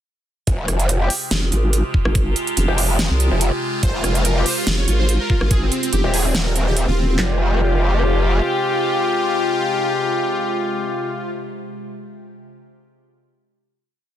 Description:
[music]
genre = heavy wobble dubstep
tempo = 143 BPM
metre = 4/4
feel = swing 54% on 16ths, half-time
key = F minor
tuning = A4 = 440 Hz
[part]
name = evolving wavetable pad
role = sustained chords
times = 0.9-11.3 s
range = C3 to G4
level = -26 LUFS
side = equal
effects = phaser, built-in reverb, sidechain pumping
[part]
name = growl bass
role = bass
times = 0.5-8.4 s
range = Eb1 to F1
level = -18 LUFS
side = equal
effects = chorus, overdrive
[part]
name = big-room dance drum kit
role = drums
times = 0.5-6.9 s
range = hi-hat, rim click, snare drum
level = -22 LUFS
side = right 2 dB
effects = studio reverb
[part]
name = dubstep drum kit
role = drums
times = 0.5-7.3 s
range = handclaps, kick drum, snare drum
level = -19 LUFS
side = equal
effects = studio reverb
[part]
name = warm brass ensemble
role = stabs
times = 1.0-11.3 s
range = Ab3 to G4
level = -24 LUFS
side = left 4 dB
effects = tape echo
[part]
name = vowel-sweep wobble bass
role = bass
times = 1.3-7.2 s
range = Eb1 to C2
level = -18 LUFS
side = equal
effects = chorus, overdrive
[part]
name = soft supersaw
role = melody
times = 3.8-11.3 s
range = C4 to Db5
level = -24 LUFS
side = equal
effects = tape echo
[sound]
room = digital ambience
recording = dense, heavily limited modern master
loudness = -16 LUFS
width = side -11 dB against mid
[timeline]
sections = 0.5-7.2 drop; 7.2-10.5 final chord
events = drop 0.5-7.2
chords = 0.5 Fmadd9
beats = | 0.47 0.89 1.31 1.73 | 2.15 2.57 2.99 3.41 | 3.83 4.25 4.67 5.09 | 5.51 5.93 6.35 6.77 | 7.19 7.61 8.03 8.45 | 8.86 9.28 9.70 10.12

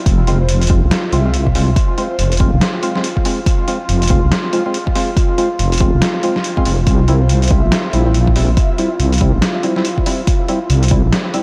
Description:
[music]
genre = deep dubstep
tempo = 141 BPM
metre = 4/4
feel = swing 61% on 16ths, half-time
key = F harmonic minor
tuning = A4 = 440 Hz
[part]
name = deep dark ambient pad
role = sustained chords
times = 0.0-11.4 s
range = F4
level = -26 LUFS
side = equal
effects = chorus, built-in reverb
[part]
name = deep soft wobble bass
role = bass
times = 0.1-11.1 s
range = F1 to C2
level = -16 LUFS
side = equal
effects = chorus
[part]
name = electronic kick drum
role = drums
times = 0.1-11.0 s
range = none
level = -18 LUFS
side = equal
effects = none
[part]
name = trip hop sampler-style drum kit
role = drums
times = 0.1-11.4 s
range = hi-hat, snare drum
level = -23 LUFS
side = equal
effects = none
[part]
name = breathy flute-like synth lead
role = melody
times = 0.3-2.4, 7.1-8.9 s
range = Bb4 to E5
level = -32 LUFS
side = equal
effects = ensemble chorus, cassette tape, dub echo
[part]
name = percussive organ stab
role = stabs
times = 0.3-11.4 s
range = G3 to F4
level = -23 LUFS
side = equal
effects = analog chorus, dub echo
[sound]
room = light reverb, digital ambience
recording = none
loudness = -15 LUFS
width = mono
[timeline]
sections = 0.0-11.4 A section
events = none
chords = 0.1 Fm; 6.9 C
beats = | 0.06 0.49 0.91 1.34 | 1.76 2.19 2.62 3.04 | 3.47 3.89 4.32 4.74 | 5.17 5.59 6.02 6.44 | 6.87 7.29 7.72 8.15 | 8.57 9.00 9.42 9.85 | 10.27 10.70 11.12

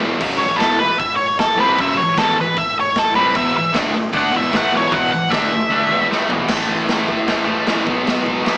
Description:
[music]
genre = garage rock duo or trio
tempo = 153 BPM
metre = 4/4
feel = straight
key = F# minor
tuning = A4 = 440 Hz
[part]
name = thick fuzz guitar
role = riff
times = 0.0-8.6 s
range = E2 to D4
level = -18 LUFS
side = equal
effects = distortion
[part]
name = raw garage drum kit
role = drums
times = 0.2-8.6 s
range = crash cymbal, hi-hat, kick drum, snare drum, toms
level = -21 LUFS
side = equal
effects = none
[part]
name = octave-fuzz lead guitar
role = melody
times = 0.4-6.1 s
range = A4 to F#5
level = -16 LUFS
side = equal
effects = distortion
[sound]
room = moderate large studio reverb, RT60 1.3 s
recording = band playing live in one room, small speaker sound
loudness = -14 LUFS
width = side -25 dB against mid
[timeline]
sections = 0.0-6.5 A section; 6.5-8.6 B section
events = lead electric guitar solo 0.0-6.5; drum fill 6.1-6.5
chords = 0.2 F#5; 3.3 E5; 6.5 A5; 7.9 B5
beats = | 0.21 0.60 0.99 1.39 | 1.78 2.17 2.56 2.96 | 3.35 3.74 4.13 4.52 | 4.92 5.31 5.70 6.09 | 6.48 6.88 7.27 7.66 | 8.06 8.45

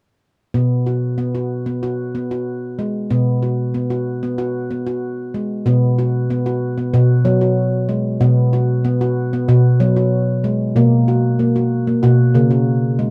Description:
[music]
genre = world meditative, meditative tuned percussion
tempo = 94 BPM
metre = 4/4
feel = straight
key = unclear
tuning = A4 = 440 Hz
[part]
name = handpan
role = solo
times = 0.5-13.1 s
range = B2 to F#4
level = -17 LUFS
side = equal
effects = none
[sound]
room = wet booth ambience, RT60 0.2 s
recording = none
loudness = -17 LUFS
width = mono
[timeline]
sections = 0.5-5.7 A section; 5.7-13.1 B section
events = none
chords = 0.5 B5; 10.8 F#/B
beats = | 0.54 1.18 1.82 2.46 | 3.10 3.74 4.38 5.02 | 5.66 6.30 6.94 7.58 | 8.22 8.85 9.49 10.13 | 10.77 11.40 12.04 12.68

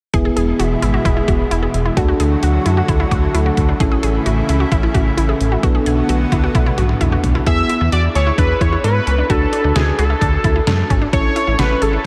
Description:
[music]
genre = synth-pop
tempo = 131 BPM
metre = 4/4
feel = straight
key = E mixolydian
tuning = A4 = 440 Hz
[part]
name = FM electric piano with soft pad layer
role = accompaniment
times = 0.1-12.1 s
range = B3 to A4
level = -24 LUFS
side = equal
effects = chorus
[part]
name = lush unison pad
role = sustained chords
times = 0.1-7.4 s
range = B2 to F#4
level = -25 LUFS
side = equal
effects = chorus
[part]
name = unison pluck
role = arpeggios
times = 0.1-12.0 s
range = C#4 to A4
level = -26 LUFS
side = equal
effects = diffuse ambient delay
[part]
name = round analog bass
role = bass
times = 0.1-12.0 s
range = E1 to G#2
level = -20 LUFS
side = equal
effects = none
[part]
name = detuned 8-bit digital drum machine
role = drums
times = 0.1-11.9 s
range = hi-hat, kick drum, snare drum, toms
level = -21 LUFS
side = equal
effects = none
[part]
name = octave-doubled lead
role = melody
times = 7.5-12.1 s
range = G#4 to E5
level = -21 LUFS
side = equal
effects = chorus, diffuse ambient delay
[sound]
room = moderate huge ambient reverb, RT60 8.3 s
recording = dreamy mix soaked in reverb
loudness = -16 LUFS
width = mono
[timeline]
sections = 0.1-7.5 A section; 7.5-12.1 B section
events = drum fill 6.5-7.5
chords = 0.1 E; 2.0 D; 3.8 A; 5.6 Bm7; 7.5 E; 9.3 D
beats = | 0.14 0.60 1.05 1.51 | 1.97 2.43 2.89 3.34 | 3.80 4.26 4.72 5.18 | 5.63 6.09 6.55 7.01 | 7.47 7.92 8.38 8.84 | 9.30 9.76 10.21 10.67 | 11.13 11.59 12.05

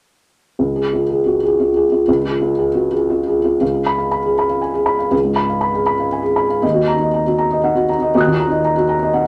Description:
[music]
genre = neoclassical minimalist piano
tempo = 120 BPM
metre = 3/4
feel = rubato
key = unclear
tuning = A4 = 439 Hz
[part]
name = felt-muted upright piano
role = solo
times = 0.6-9.3 s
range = Db2 to Gb6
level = -17 LUFS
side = equal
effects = none
[sound]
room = moderate club reverb, RT60 0.7 s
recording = none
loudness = -17 LUFS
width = mono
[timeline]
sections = 0.6-3.6 A section; 3.6-9.3 B section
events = none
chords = 0.6 Db; 3.6 Db7; 6.6 Ebm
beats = | 0.59 1.09 1.59 | 2.08 2.58 3.09 | 3.61 4.12 4.62 | 5.12 5.63 6.13 | 6.64 7.13 7.63 | 8.13 8.62 9.12

